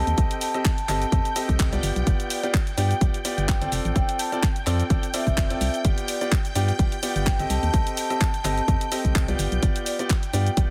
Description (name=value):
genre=piano house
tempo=127 BPM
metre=4/4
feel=swing 55% on 16ths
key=G mixolydian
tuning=A4 = 440 Hz
part: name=vibraphone with medium mallets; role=melody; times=0.0-10.5 s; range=D5 to A5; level=-32 LUFS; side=equal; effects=none
part: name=analog string pad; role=sustained chords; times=0.0-10.7 s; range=G5 to G6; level=-37 LUFS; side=equal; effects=ensemble chorus, sidechain pumping
part: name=bright concert grand piano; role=riff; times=0.0-10.7 s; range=B3 to Eb5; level=-32 LUFS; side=equal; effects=sidechain pumping
part: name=organ-like FM bass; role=bass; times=0.0-10.7 s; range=F1 to G2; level=-28 LUFS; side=equal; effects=sidechain pumping
part: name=house drum kit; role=drums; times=0.1-10.7 s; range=handclaps, hi-hat, shaker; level=-32 LUFS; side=equal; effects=none
part: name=electronic kick drum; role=drums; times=0.2-10.7 s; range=none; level=-25 LUFS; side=equal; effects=none
room=digital ambience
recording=heavily compressed radio sound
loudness=-23 LUFS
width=mono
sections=0.0-10.7 A section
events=none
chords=0.0 G7; 3.7 F6; 5.8 G7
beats=| 0.18 0.65 1.12 1.59 | 2.07 2.54 3.01 3.48 | 3.96 4.43 4.90 5.37 | 5.85 6.32 6.79 7.26 | 7.74 8.21 8.68 9.15 | 9.63 10.10 10.57